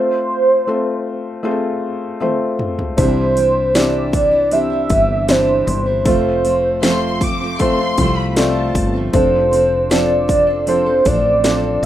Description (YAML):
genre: pop ballad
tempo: 78 BPM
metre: 4/4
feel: straight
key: unclear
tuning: A4 = 440 Hz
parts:
  - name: warm velvety synth lead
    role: melody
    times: 0.0-11.8 s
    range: C5 to E5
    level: -15 LUFS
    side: right 2 dB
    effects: chorus, plate reverb
  - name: felt-muted upright piano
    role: accompaniment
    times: 0.0-11.9 s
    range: C3 to D5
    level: -20 LUFS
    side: left 2 dB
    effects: plate reverb
  - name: house drum kit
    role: drums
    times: 2.2-11.9 s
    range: hi-hat, kick drum, snare drum, toms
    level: -20 LUFS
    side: left 1 dB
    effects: none
  - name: picked steel-string acoustic guitar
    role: arpeggios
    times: 3.0-11.9 s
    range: F2 to A4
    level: -24 LUFS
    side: right 5 dB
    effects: plate reverb
  - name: woody fretless electric bass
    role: bass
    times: 3.0-11.9 s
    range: F1 to C2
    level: -23 LUFS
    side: left 1 dB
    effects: none
  - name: warm studio violin section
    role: second line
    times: 6.8-8.9 s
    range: A5 to D6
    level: -23 LUFS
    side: left 2 dB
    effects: none
room: moderate studio reverb, RT60 0.5 s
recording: rough home demo mix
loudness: -13 LUFS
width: side -12 dB against mid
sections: 0.0-11.9 A section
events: drum fill 2.2-3.0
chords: 0.0 F; 3.0 Cadd9; 6.1 Dm7/F